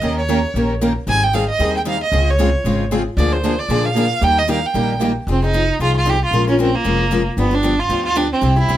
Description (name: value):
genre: acoustic string swing (jazz manouche)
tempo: 228 BPM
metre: 4/4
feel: swing 56% on 8ths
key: F minor from 5.3 s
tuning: A4 = 442 Hz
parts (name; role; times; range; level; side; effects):
- clear violin; melody; 0.0-8.8 s; Bb3 to Ab5; -19 LUFS; right 3 dB; none
- picked steel-string acoustic guitar; accompaniment; 0.0-8.8 s; C3 to Bb4; -21 LUFS; left 4 dB; none
- picked steel-string acoustic guitar; accompaniment; 0.0-5.1 s; Db3 to Bb4; -23 LUFS; right 4 dB; none
- upright bass; bass; 0.0-8.8 s; F1 to Bb2; -20 LUFS; equal; none
room: moderate studio reverb, RT60 0.5 s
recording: none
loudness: -15 LUFS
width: side -12 dB against mid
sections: 0.0-5.3 A section; 5.3-8.8 B section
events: none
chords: 0.0 Eb7; 1.1 Abmaj7; 2.1 Dbmaj7; 3.2 Bb7/D; 4.2 Eb; 5.3 Fm7; 6.3 Bbm7; 7.4 G7